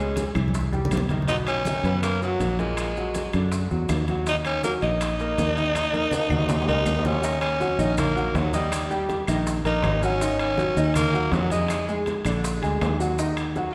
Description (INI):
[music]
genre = latin, salsa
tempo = 161 BPM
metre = 4/4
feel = straight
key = Eb minor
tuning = A4 = 437 Hz
[part]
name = raspy tenor saxophone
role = melody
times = 0.0-12.0 s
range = Gb3 to D#4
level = -28 LUFS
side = equal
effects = none
[part]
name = bright grand piano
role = accompaniment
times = 0.0-13.7 s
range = A#2 to Eb6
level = -30 LUFS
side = equal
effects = none
[part]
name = fingered electric bass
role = bass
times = 0.0-13.7 s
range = Ab1 to F#2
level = -29 LUFS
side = equal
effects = none
[part]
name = bongos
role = percussion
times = 0.2-13.7 s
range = none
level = -39 LUFS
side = equal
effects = none
[part]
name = congas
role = percussion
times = 0.2-13.7 s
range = none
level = -35 LUFS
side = equal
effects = none
[part]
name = maracas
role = percussion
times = 0.2-13.7 s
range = none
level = -44 LUFS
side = equal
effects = none
[part]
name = timbales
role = percussion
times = 0.2-13.7 s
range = none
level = -37 LUFS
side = equal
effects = none
[part]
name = claves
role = percussion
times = 0.4-13.6 s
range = none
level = -45 LUFS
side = equal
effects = none
[sound]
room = wet concert hall reverb, RT60 1.9 s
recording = recorded in a church or concert hall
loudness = -24 LUFS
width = mono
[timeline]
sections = 0.0-7.2 A section; 7.2-13.7 B section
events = drum fill 0.4-1.3, 5.8-7.2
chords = 0.0 Dbm; 0.5 C; 1.3 Bmaj9; 2.8 Bbaug7; 4.3 Ebm; 7.2 Ebm7; 8.7 Eb; 10.2 Ab9sus4; 11.7 Bb7; 13.2 Ebm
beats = 0.17 0.54 0.91 | 1.29 1.66 2.03 2.40 | 2.77 3.15 3.52 3.89 | 4.26 4.63 5.01 5.38 | 5.75 6.12 6.50 6.87 | 7.24 7.61 7.98 8.36 | 8.73 9.10 9.47 9.84 | 10.21 10.58 10.96 11.33 | 11.70 12.07 12.44 12.81 | 13.18 13.55